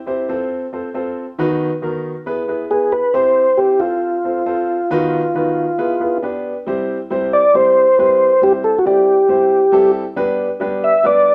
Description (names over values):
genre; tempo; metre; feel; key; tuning
soul; 137 BPM; 4/4; straight; C major; A4 = 439 Hz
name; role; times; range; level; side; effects
warm baby grand piano; accompaniment; 0.1-11.3 s; D#3 to D5; -22 LUFS; equal; none
mellow tonewheel organ; melody; 2.7-11.3 s; F4 to E5; -15 LUFS; equal; chorus vibrato
room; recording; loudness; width
moderate stone room reverb, RT60 1.1 s; band playing live in one room; -16 LUFS; mono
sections
0.0-6.7 A section; 6.7-11.3 B section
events
none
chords
0.3 F; 1.4 B/D#; 2.3 E; 3.1 C; 3.8 F; 4.9 B/D#; 5.8 E; 6.2 G; 6.7 C; 10.2 G